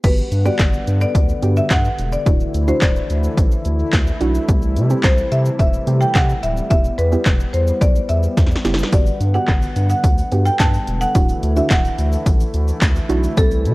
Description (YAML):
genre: dance-pop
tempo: 108 BPM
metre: 4/4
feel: straight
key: unclear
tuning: A4 = 440 Hz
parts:
  - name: marimba with medium mallets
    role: melody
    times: 0.0-13.7 s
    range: A4 to A5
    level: -23 LUFS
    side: left 1 dB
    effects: ping-pong delay
  - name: soft round pluck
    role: accompaniment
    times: 0.0-13.7 s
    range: A3 to A4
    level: -25 LUFS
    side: right 3 dB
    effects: chorus, sidechain pumping
  - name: warm analog pad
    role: sustained chords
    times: 0.0-13.7 s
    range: C3 to F#5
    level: -26 LUFS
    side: left 1 dB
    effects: chorus, sidechain pumping
  - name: saturated sub bass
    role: bass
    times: 0.0-13.7 s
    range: D1 to C3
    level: -19 LUFS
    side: equal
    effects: sidechain pumping
  - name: punchy analog drum machine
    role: drums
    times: 0.0-13.7 s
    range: crash cymbal, handclaps, hi-hat, kick drum, shaker, snare drum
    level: -17 LUFS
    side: equal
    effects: none
  - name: tube shaker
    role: percussion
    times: 8.9-13.6 s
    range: none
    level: -44 LUFS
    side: left 4 dB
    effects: none
room: light reverb, digital ambience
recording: worn, warbling old tape, cassette tape, warbly pitch drift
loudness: -14 LUFS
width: side -20 dB against mid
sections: 0.0-13.7 A section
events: drum fill 8.4-8.9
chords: 0.0 Gmaj7; 2.3 Dadd9; 4.5 Am7/C; 6.7 Em; 8.9 Gmaj7; 11.2 Dadd9